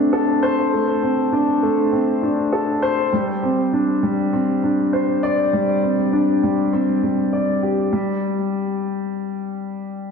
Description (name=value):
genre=electronica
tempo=100 BPM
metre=4/4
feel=straight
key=unclear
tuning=A4 = 440 Hz
part: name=dark concert grand piano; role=riff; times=0.0-10.1 s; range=G3 to D5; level=-17 LUFS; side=left 1 dB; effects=lush chorus, tape echo
room=wet plate reverb, RT60 3.6 s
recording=dreamy mix soaked in reverb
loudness=-17 LUFS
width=side -5 dB against mid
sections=0.0-7.9 A section; 7.9-10.1 B section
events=none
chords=none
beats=0.13 | 0.73 1.33 1.93 2.53 | 3.13 3.73 4.33 4.93 | 5.53 6.13 6.73 7.33 | 7.93 8.53 9.13 9.73